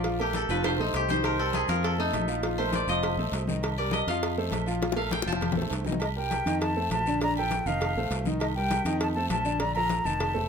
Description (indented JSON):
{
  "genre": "latin, salsa",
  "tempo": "201 BPM",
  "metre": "4/4",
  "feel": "straight",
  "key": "Bb major",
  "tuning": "A4 = 440 Hz",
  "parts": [
    { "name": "koto", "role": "melody", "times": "0.0-6.5 s", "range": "Eb4 to A5", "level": "-30 LUFS", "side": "left 1 dB", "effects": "none" },
    { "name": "clear grand piano", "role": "accompaniment", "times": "0.0-10.5 s", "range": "D3 to F5", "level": "-31 LUFS", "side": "equal", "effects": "none" },
    { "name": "fingered electric bass", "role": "bass", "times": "0.0-10.5 s", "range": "F1 to F2", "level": "-32 LUFS", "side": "equal", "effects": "none" },
    { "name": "agogo bells and timbales", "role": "percussion", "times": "0.0-10.4 s", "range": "none", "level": "-37 LUFS", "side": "right 5 dB", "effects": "none" },
    { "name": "congas", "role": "percussion", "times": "0.0-10.5 s", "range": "none", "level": "-36 LUFS", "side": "left 4 dB", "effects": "none" },
    { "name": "cowbell and bongos", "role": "percussion", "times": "0.0-10.4 s", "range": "none", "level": "-34 LUFS", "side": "left 1 dB", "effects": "none" },
    { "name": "guiro", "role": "percussion", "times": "0.0-10.5 s", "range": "none", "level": "-43 LUFS", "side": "left 7 dB", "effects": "none" },
    { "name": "hollow concert flute", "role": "melody", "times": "6.0-10.5 s", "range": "Eb5 to Bb5", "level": "-29 LUFS", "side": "left 1 dB", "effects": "plate reverb" }
  ],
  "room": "light reverb",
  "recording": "close, detailed microphones",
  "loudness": "-25 LUFS",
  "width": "side -6 dB against mid",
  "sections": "0.0-6.0 A section; 6.0-10.5 B section",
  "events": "koto solo 0.0-6.0; drum fill 0.5-1.2, 4.8-6.0",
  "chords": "0.0 Bb5; 0.6 F7; 1.2 Cm7; 1.8 F; 2.4 Bb5; 3.0 F7; 3.6 Cm7; 4.2 F; 4.8 Bb5; 5.4 F7; 6.0 Cm7; 6.6 F7; 7.2 Bbmaj7; 7.8 F7; 8.4 Cm7; 9.0 F7; 9.6 Bbmaj7"
}